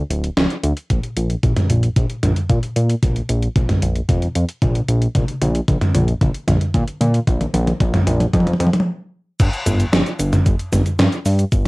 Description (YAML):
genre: synthwave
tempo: 113 BPM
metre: 4/4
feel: straight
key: unclear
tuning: A4 = 440 Hz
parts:
  - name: fat analog bass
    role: bass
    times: 0.0-11.7 s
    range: D1 to Bb2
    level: -18 LUFS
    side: equal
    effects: sidechain pumping
  - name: gated 80s digital drum machine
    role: drums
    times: 0.1-11.7 s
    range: cabasa, crash cymbal, hi-hat, snare drum, toms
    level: -19 LUFS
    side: equal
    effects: gated reverb, gated reverb snare, overdrive, studio reverb, cassette tape
  - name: electronic kick drum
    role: drums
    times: 0.9-11.6 s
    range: none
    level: -18 LUFS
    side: equal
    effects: studio reverb, cassette tape
room: moderate studio ambience, RT60 0.5 s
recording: home recording on cassette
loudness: -16 LUFS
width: side -23 dB against mid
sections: 0.9-9.4 A section; 9.4-11.7 B section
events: drum fill 0.9-8.9; stop 8.9-9.4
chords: none